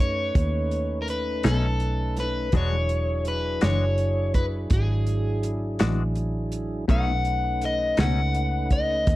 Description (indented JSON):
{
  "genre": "slow blues",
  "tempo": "55 BPM (dotted quarters)",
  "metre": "12/8",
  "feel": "straight",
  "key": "B mixolydian",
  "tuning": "A4 = 441 Hz",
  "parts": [
    { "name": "crunchy overdriven guitar", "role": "melody", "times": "0.0-9.2 s", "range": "G#4 to F#5", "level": "-27 LUFS", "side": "left 2 dB", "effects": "spring reverb, slapback echo" },
    { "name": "tonewheel organ", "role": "sustained chords", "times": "0.0-9.2 s", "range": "F#3 to B4", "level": "-32 LUFS", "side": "right 1 dB", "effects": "slow rotary speaker" },
    { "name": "vintage muted fingered electric bass", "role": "bass", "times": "0.0-9.2 s", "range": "E1 to F#2", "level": "-26 LUFS", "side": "equal", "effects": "none" },
    { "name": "warm soul drum kit", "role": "drums", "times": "0.4-9.2 s", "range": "hi-hat, kick drum, snare drum", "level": "-24 LUFS", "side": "right 1 dB", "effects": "none" },
    { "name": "semi-hollow electric guitar", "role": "accompaniment", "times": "1.4-8.2 s", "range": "B2 to F#4", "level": "-28 LUFS", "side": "left 5 dB", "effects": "harmonic tremolo" }
  ],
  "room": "small room reverb",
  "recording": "dry, close 1970s-style studio recording",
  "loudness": "-22 LUFS",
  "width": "side -17 dB against mid",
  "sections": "0.0-9.2 A section",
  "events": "none",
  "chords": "0.0 B9; 2.5 E9; 6.9 B9"
}